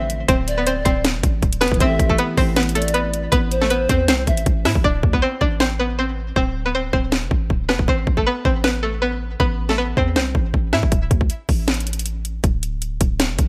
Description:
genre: hip hop, trap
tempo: 158 BPM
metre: 4/4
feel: half-time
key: D dorian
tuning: A4 = 440 Hz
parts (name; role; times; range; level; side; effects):
- string-like resonator pluck; melody; 0.0-10.9 s; A3 to E5; -24 LUFS; equal; chorus, low-pass filter
- mellow hollow polished pan flute; second line; 0.0-4.5 s; B4 to E5; -27 LUFS; equal; digital delay
- concert harp; accompaniment; 0.0-5.1 s; D3 to E4; -32 LUFS; equal; low-pass filter
- warm 808-style bass; bass; 0.0-13.5 s; D1 to A2; -25 LUFS; equal; none
- trap drum kit; drums; 0.1-13.5 s; hi-hat, kick drum, rim click, snare drum; -22 LUFS; equal; none
room: light reverb, digital ambience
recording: bright 1980s-style digital production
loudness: -19 LUFS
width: mono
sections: 0.0-4.8 A section; 4.8-13.5 B section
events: hi-hats muted 4.8-10.9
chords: 0.0 Dm7; 1.8 Am7; 4.8 D7(no3); 7.9 Am; 10.9 D5

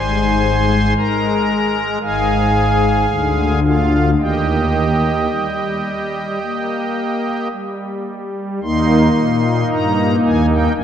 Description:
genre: classical, chorale-style piece for pipe organ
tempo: 53-58 BPM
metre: 4/4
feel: rubato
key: Eb major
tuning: A4 = 440 Hz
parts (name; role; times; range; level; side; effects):
- pipe organ, strings celeste; solo; 0.0-10.8 s; F1 to C6; -14 LUFS; equal; none
room: wet church reverb, RT60 3.5 s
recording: dark, warm production, nothing above 10.7 kHz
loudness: -14 LUFS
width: side -9 dB against mid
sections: 0.0-8.6 A section; 8.6-10.8 A section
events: none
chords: 0.0 Ab; 2.0 Fm/Ab; 3.1 Ddim; 4.2 Eb

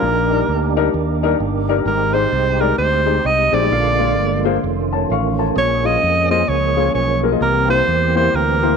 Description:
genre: uptempo gospel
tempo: 130 BPM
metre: 4/4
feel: swing 60% on 8ths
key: Eb major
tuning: A4 = 440 Hz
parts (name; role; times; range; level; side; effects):
- breathy alto saxophone; melody; 0.0-8.8 s; Bb4 to Eb5; -18 LUFS; right 1 dB; none
- warm upright piano; accompaniment; 0.0-8.7 s; Ab2 to Db6; -21 LUFS; left 11 dB; none
- mellow French horn section; sustained chords; 0.0-8.8 s; D3 to G4; -28 LUFS; left 10 dB; none
- percussive tonewheel organ; sustained chords; 0.0-8.8 s; D3 to Ab4; -22 LUFS; right 12 dB; slow rotary speaker, overdrive, chorus vibrato
- fingered electric bass; bass; 0.0-8.7 s; F1 to F2; -21 LUFS; right 1 dB; none
room: light reverb, small room ambience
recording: 1960s-style stereo with parts hard left and right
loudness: -14 LUFS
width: side -6 dB against mid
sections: 0.0-8.8 A section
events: upright piano fill 4.6-5.6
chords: 0.0 Ebmaj7/Bb; 1.9 Abmaj7; 3.7 Bb7; 4.6 F7b13; 5.6 Bbm7; 7.4 C7

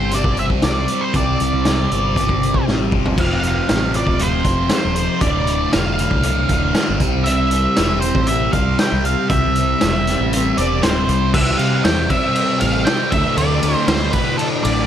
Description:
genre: psychedelic rock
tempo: 118 BPM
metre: 4/4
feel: straight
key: unclear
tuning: A4 = 440 Hz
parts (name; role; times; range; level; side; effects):
- octave-fuzz lead guitar; melody; 0.0-14.9 s; A4 to G5; -21 LUFS; right 2 dB; distortion, tape echo
- thick fuzz guitar; riff; 0.0-14.9 s; D2 to C4; -20 LUFS; left 1 dB; distortion, phaser
- overdriven picked electric bass; bass; 0.0-14.9 s; D1 to C3; -21 LUFS; equal; none
- raw garage drum kit; drums; 0.1-14.8 s; crash cymbal, hi-hat, kick drum, ride cymbal, snare drum, toms; -20 LUFS; equal; none
room: little or no reverb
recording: none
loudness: -15 LUFS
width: side -10 dB against mid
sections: 0.0-3.2 A section; 3.2-11.3 B section; 11.3-14.9 C section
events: drum fill 2.7-3.2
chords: 0.0 Csus2; 3.2 F; 5.2 Dm; 7.0 C; 13.1 D5

